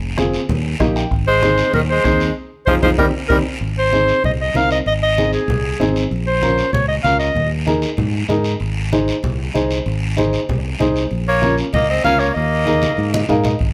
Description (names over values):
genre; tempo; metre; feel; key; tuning
latin, cumbia; 192 BPM; 4/4; straight; Ab major; A4 = 441 Hz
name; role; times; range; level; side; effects
fingered electric bass; bass; 0.0-13.7 s; F1 to Ab2; -23 LUFS; equal; none
dark upright piano; accompaniment; 0.2-13.6 s; Bb3 to G5; -22 LUFS; equal; none
bombo; percussion; 0.2-3.4, 13.6-13.7 s; none; -24 LUFS; equal; none
congas; percussion; 0.2-13.7 s; none; -28 LUFS; equal; none
guiro; percussion; 0.2-13.7 s; none; -32 LUFS; equal; none
clear clarinet; melody; 1.3-7.5, 11.3-13.2 s; Ab4 to F5; -20 LUFS; equal; none
raspy tenor saxophone; second line; 1.3-3.4, 11.3-13.3 s; Eb3 to Db4; -26 LUFS; equal; none
room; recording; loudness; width
light reverb; none; -17 LUFS; mono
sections
0.0-3.6 A section; 3.6-13.7 B section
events
upright piano fill 0.6-1.1, 13.0-13.6; band accent 2.4-3.6; drum fill 2.7-3.6, 12.8-13.6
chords
0.5 Eb; 1.1 Ab; 2.4 Fm7; 3.0 Eb6; 3.6 Ab; 6.1 Bbm; 7.4 Ebsus4; 8.6 Ab; 11.1 Bbm; 12.4 Ebsus4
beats
0.17 0.49 0.80 | 1.11 1.43 1.74 2.05 | 2.36 2.67 2.99 3.30 | 3.61 3.92 4.24 4.55 | 4.86 5.17 5.49 5.80 | 6.11 6.42 6.74 7.05 | 7.36 7.67 7.99 8.30 | 8.61 8.92 9.23 9.55 | 9.86 10.17 10.48 10.79 | 11.11 11.42 11.73 12.04 | 12.36 12.67 12.98 13.29 | 13.60